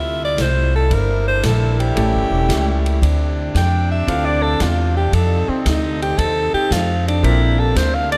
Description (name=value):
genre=jazz, big band swing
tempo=114 BPM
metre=4/4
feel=swing 69% on 8ths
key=F major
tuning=A4 = 441 Hz
part: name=clear alto saxophone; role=melody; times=0.0-8.2 s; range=C4 to G5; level=-23 LUFS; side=equal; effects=analog delay
part: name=mellow saxophone section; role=sustained chords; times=0.0-8.2 s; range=C3 to F4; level=-28 LUFS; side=equal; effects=none
part: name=upright bass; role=bass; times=0.0-8.2 s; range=E1 to F2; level=-20 LUFS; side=equal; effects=none
part: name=swinging big-band drum kit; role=drums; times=0.4-8.2 s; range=hi-hat, kick drum, ride cymbal, snare drum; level=-29 LUFS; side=equal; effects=none
part: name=clear grand piano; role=accompaniment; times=2.0-8.1 s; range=A3 to Bb4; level=-30 LUFS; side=equal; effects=none
room=moderate cathedral reverb, RT60 5.8 s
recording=dreamy mix soaked in reverb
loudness=-17 LUFS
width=mono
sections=0.0-8.2 A section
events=alto saxophone solo 0.0-8.2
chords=0.0 Fmaj7; 0.9 Em7b5; 2.0 A7; 3.0 Dm7; 5.1 F5; 7.2 Bbmaj9